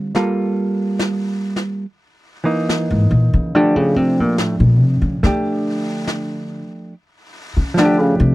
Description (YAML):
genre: jazz ballad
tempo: 71 BPM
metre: 4/4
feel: swing 69% on 8ths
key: F major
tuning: A4 = 445 Hz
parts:
  - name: hollow-body jazz guitar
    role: accompaniment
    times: 0.0-8.3 s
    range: D3 to A4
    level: -19 LUFS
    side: right 1 dB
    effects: none
  - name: brushed snare drum and snare drum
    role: drums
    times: 0.1-8.3 s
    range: none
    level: -27 LUFS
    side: left 1 dB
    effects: none
  - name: upright bass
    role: bass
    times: 2.9-8.3 s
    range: Ab2 to D3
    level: -15 LUFS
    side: left 1 dB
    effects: none
room: little or no reverb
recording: dry, close 1970s-style studio recording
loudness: -15 LUFS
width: side -18 dB against mid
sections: 0.0-8.3 A section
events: upright bass solo 0.0-8.3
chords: 0.1 Gm9; 1.8 Dbm69 (rootless); 3.5 F69